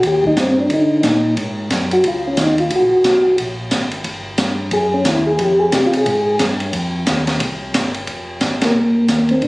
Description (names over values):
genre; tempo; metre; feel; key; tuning
soul jazz organ trio; 179 BPM; 4/4; swing 62% on 8ths; F minor; A4 = 440 Hz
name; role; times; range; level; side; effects
percussive tonewheel organ; melody; 0.0-6.4, 8.6-9.5 s; Bb3 to Ab4; -14 LUFS; equal; slow rotary speaker, chorus vibrato
mellow tonewheel organ; bass; 0.0-9.5 s; F1 to D3; -23 LUFS; equal; chorus vibrato, slow rotary speaker
open jazz drum kit; drums; 0.0-9.5 s; hi-hat, kick drum, ride cymbal, snare drum; -20 LUFS; equal; none
room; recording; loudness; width
light reverb; recorded on a phone in the room, studio reverb, compression; -14 LUFS; side -22 dB against mid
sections
0.0-8.1 A section; 8.1-9.5 B section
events
tonewheel organ solo 0.0-8.1; band accent 8.6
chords
0.0 Ebmaj7; 1.4 Gbsus2; 2.0 Dbadd9; 2.7 Gb; 4.1 N.C.; 4.7 Ebmadd11; 5.4 Fm7